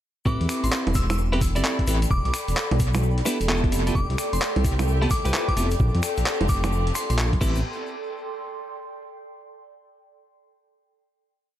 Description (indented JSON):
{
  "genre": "UK garage, two-step garage",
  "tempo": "130 BPM",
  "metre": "4/4",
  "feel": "swing 64% on 16ths",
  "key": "A minor",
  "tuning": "A4 = 439 Hz",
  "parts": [
    { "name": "glassy synth bell", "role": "melody", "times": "0.3-7.2 s", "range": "C6 to E6", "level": "-33 LUFS", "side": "left 1 dB", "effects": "chorus, tape echo" },
    { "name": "clean electric guitar", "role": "stabs", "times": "0.3-7.6 s", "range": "B3 to D5", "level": "-28 LUFS", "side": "right 1 dB", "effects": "tape echo" },
    { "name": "dark detuned saw bass", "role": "bass", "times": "0.3-7.6 s", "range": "E1 to F2", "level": "-23 LUFS", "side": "equal", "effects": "tube saturation" },
    { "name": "electronic kick drum", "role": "drums", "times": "0.3-7.5 s", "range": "none", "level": "-25 LUFS", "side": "equal", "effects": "none" },
    { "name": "egg shaker", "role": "percussion", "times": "0.3-7.6 s", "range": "none", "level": "-37 LUFS", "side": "left 6 dB", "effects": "tape echo" },
    { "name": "warbly tape-like pad", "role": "texture", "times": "1.1-9.5 s", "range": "A4 to C6", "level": "-32 LUFS", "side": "left 1 dB", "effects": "chorus, built-in reverb, phaser, sidechain pumping" },
    { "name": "boom bap sampler-style drum kit", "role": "drums", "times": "0.4-7.5 s", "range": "bongos, crash cymbal, finger snaps, handclaps, hi-hat", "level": "-28 LUFS", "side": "right 1 dB", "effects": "tape echo" },
    { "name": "bright studio violin section", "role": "sustained chords", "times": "4.0-7.6 s", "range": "A3 to E5", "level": "-37 LUFS", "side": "equal", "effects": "vintage 12-bit sampler grit, sidechain pumping" }
  ],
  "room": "little or no reverb",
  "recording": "echo-heavy mix",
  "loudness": "-21 LUFS",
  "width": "side -12 dB against mid",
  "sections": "0.3-7.6 drop; 7.6-9.5 final chord",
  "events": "drop 0.3-7.6",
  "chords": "0.3 Am9; 2.1 Em7; 3.7 Fmaj9#11; 5.8 Bb69; 7.4 Am9; 7.6 Am7",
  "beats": "| 0.26 0.72 1.18 1.65 | 2.11 2.57 3.03 3.49 | 3.95 4.41 4.88 5.34 | 5.80 6.26 6.72 7.18 | 7.64 8.11 8.57 9.03"
}